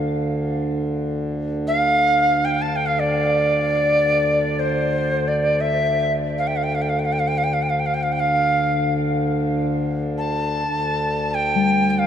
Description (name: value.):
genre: world meditative, free-time meditation music.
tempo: free time.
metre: none.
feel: none.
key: D minor.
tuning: A4 = 443 Hz.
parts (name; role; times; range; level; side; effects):
pedal harmonium; drone; 0.0-12.1 s; D2 to D3; -23 LUFS; equal; none.
breathy bright Native American-style cedar flute; melody; 1.7-12.1 s; C5 to A5; -20 LUFS; equal; none.
bronze singing bowl; texture; 11.6-12.1 s; G3; -18 LUFS; left 4 dB; none.
room: wet huge ambient reverb, RT60 5.0 s.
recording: dark, warm production.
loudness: -18 LUFS.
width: side -9 dB against mid.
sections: 0.0-12.1 A section.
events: none.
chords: none.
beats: free time.